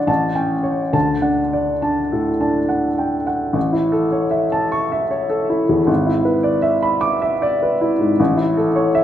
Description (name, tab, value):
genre	classical, romantic character piece for solo piano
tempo	67-80 BPM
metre	3/4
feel	rubato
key	D major, A major from 3.6 s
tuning	A4 = 439 Hz
part	warm upright piano	solo	0.0-9.0 s	G#1 to D6	-16 LUFS	equal	none
room	wet recital hall reverb, RT60 1.8 s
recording	recorded in a church or concert hall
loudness	-16 LUFS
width	side -11 dB against mid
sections	0.0-3.6 A section; 3.6-9.0 B section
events	none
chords	0.1 A7; 0.9 D; 3.6 A; 5.9 E7/G#; 8.2 A